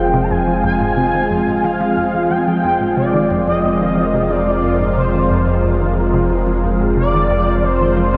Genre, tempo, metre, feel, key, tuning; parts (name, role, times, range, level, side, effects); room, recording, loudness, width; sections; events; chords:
ambient, sequencer-driven space music; 90 BPM; 4/4; straight; F dorian; A4 = 441 Hz
expressive synth lead; melody; 0.0-8.2 s; C5 to Bb5; -22 LUFS; equal; ensemble chorus, analog delay
lush unison pad; sustained chords; 0.0-8.2 s; F3 to F5; -20 LUFS; equal; chorus
resonant blip pluck; riff; 0.0-8.2 s; F2 to F3; -24 LUFS; equal; chorus, phaser, analog delay
round analog bass; bass; 0.0-8.2 s; F1; -24 LUFS; equal
wind-like tuned noise texture; texture; 0.0-8.2 s; Ab3 to Bb4; -31 LUFS; equal
wet huge ambient reverb, RT60 8.0 s; dreamy mix soaked in reverb; -16 LUFS; mono
0.0-8.2 A section
0.0 Fmadd9